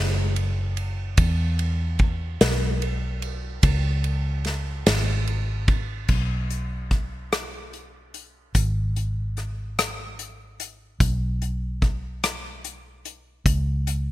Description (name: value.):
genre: six-eight pop ballad.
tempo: 49 BPM (dotted quarters).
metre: 6/8.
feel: straight.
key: unclear.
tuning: A4 = 442 Hz.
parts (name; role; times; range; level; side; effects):
vintage muted fingered electric bass; bass; 0.0-14.1 s; F#1 to E2; -25 LUFS; equal; none.
unplugged drum kit; drums; 0.4-14.1 s; crash cymbal, hi-hat, kick drum, ride cymbal, rim click, snare drum; -24 LUFS; equal; none.
room: little or no reverb.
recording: bright 1980s-style digital production.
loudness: -22 LUFS.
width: side -16 dB against mid.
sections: 0.0-6.1 A section; 6.1-14.1 B section.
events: none.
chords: none.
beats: | 1.18 2.41 | 3.64 4.87 | 6.09 7.32 | 8.55 9.78 | 11.01 12.23 | 13.46.